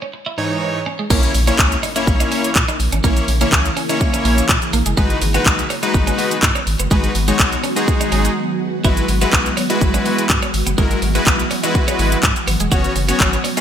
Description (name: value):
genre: dance-pop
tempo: 124 BPM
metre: 4/4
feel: straight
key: unclear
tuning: A4 = 441 Hz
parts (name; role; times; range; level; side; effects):
- twelve-string electric guitar; riff; 0.0-13.6 s; G#3 to F#4; -25 LUFS; right 3 dB; wide subtle chorus
- big bright polysynth; accompaniment; 0.4-13.6 s; G#2 to C#5; -20 LUFS; left 2 dB; sidechain pumping
- ethereal airy pad; sustained chords; 1.9-13.6 s; B2 to A#4; -24 LUFS; right 2 dB; ensemble chorus, built-in reverb, phaser, sidechain pumping
- round analog bass; bass; 1.1-13.4 s; E1 to A#2; -20 LUFS; equal; sidechain pumping
- house drum kit; drums; 1.1-13.6 s; crash cymbal, handclaps, hi-hat, kick drum, shaker; -17 LUFS; equal; gated reverb
- impact; sound effects; 1.1-3.0 s; none; -31 LUFS; equal; none
room: light reverb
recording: bright 1980s-style digital production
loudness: -14 LUFS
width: side -9 dB against mid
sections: 0.0-1.1 A section; 1.1-13.6 B section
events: break 0.0-1.1, 8.4-8.8; drop 1.1-13.6; impact 1.1-3.0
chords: 0.0 C#madd9; 1.1 A#dim; 5.0 G#m7; 8.8 Eadd9; 12.7 F#sus4